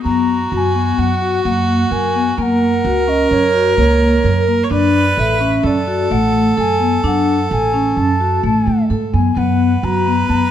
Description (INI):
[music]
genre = contemporary instrumental, chamber music in an uneven meter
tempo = 129 BPM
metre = 5/4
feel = straight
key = unclear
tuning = A4 = 440 Hz
[part]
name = breathy mellow wooden flute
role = melody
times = 0.0-10.5 s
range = C#5 to A#5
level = -21 LUFS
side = left 2 dB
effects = none
[part]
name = clear viola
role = second line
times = 0.0-10.5 s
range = F#4 to C#5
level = -19 LUFS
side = right 3 dB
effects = none
[part]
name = vibraphone with medium mallets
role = arpeggios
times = 0.0-10.4 s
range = A3 to A#4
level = -17 LUFS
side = left 2 dB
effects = none
[part]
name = upright bass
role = bass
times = 0.1-10.5 s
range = A1 to A2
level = -19 LUFS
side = right 2 dB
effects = none
[sound]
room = moderate recital hall reverb, RT60 1.5 s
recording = none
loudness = -13 LUFS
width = side -10 dB against mid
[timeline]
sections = 0.1-10.5 A section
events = none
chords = 0.1 B5/F#; 2.4 F#; 4.7 Dmaj7; 9.4 B5/F#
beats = | 0.06 0.52 0.99 1.45 1.92 | 2.38 2.85 3.31 3.78 4.24 | 4.71 5.17 5.64 6.10 6.57 | 7.04 7.50 7.97 8.43 8.90 | 9.37 9.83 10.30